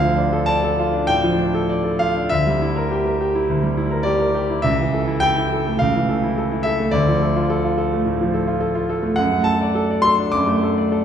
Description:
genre	classical, romantic character piece for solo piano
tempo	105 BPM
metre	4/4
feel	uneven beats, rubato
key	D minor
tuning	A4 = 439 Hz
part	clear concert grand piano	solo	0.0-11.0 s	C#2 to D6	-17 LUFS	equal	none
room	wet recital hall reverb, RT60 1.8 s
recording	recorded in a church or concert hall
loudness	-17 LUFS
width	side -8 dB against mid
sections	0.0-11.0 A section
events	none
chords	0.0 Dm; 2.3 Em7b5/D; 4.6 A/C#; 6.9 Dm; 9.2 D/F#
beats	0.51 1.11 1.71 | 2.32 2.92 3.49 4.05 | 4.64 5.22 5.80 6.37 | 6.94 7.50 8.07 8.62 | 9.19 9.76 10.33 10.91

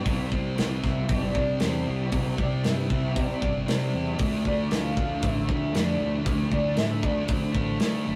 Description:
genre	rock, shoegaze and dream pop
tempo	116 BPM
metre	4/4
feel	straight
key	D minor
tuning	A4 = 439 Hz
part	electric guitar through a small old amp	arpeggios	0.0-8.2 s	E3 to G4	-42 LUFS	equal	none
part	crunchy overdriven guitar	riff	0.0-8.2 s	C3 to E4	-34 LUFS	equal	none
part	thick fuzz guitar	riff	0.0-8.2 s	C3 to D4	-31 LUFS	equal	distortion
part	growling fingered electric bass	bass	0.0-8.2 s	F#1 to D3	-35 LUFS	equal	overdrive
part	loose indie drum kit	drums	0.1-7.9 s	hi-hat, kick drum, snare drum	-31 LUFS	equal	none
part	warm velvety synth lead	melody	0.3-8.1 s	C5 to F5	-35 LUFS	equal	chorus
room	wet studio ambience, RT60 0.5 s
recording	rough rehearsal-room recording, warm saturation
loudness	-26 LUFS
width	mono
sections	0.0-8.2 A section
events	none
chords	0.0 Cadd9; 4.2 Dmadd9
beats	| 0.06 0.58 1.10 1.61 | 2.13 2.65 3.17 3.68 | 4.20 4.71 5.23 5.74 | 6.26 6.77 7.29 7.80

